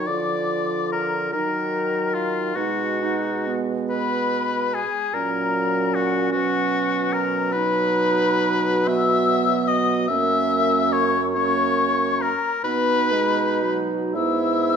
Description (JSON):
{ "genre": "classical, slow romantic movement for wind quintet", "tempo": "37-51 BPM (dotted quarters)", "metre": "6/8", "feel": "rubato", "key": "B major from 7.5 s", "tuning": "A4 = 439 Hz", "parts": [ { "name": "silver concert flute", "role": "melody", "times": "0.0-14.8 s", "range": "F5 to E6", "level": "-28 LUFS", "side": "left 8 dB", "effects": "none" }, { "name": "clear oboe", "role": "second line", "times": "0.0-14.8 s", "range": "F4 to E5", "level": "-23 LUFS", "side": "left 3 dB", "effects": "none" }, { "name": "warm French horn", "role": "accompaniment", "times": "0.0-14.8 s", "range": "F3 to B3", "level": "-29 LUFS", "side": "equal", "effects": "none" }, { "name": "warm clarinet", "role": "accompaniment", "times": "0.0-14.8 s", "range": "B3 to F4", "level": "-26 LUFS", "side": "right 8 dB", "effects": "none" }, { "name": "mellow bassoon", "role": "bass", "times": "0.0-14.8 s", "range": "F#2 to Eb3", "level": "-27 LUFS", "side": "right 2 dB", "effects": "none" } ], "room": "moderate recital hall reverb, RT60 1.5 s", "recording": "none", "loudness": "-19 LUFS", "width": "side -7 dB against mid", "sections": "0.0-14.8 A section", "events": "none", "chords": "0.1 Bb/D; 1.3 Ebm; 2.6 B; 5.1 Gb/Bb; 6.3 B5; 7.5 B; 10.1 F#7; 12.6 B; 14.1 E/G#" }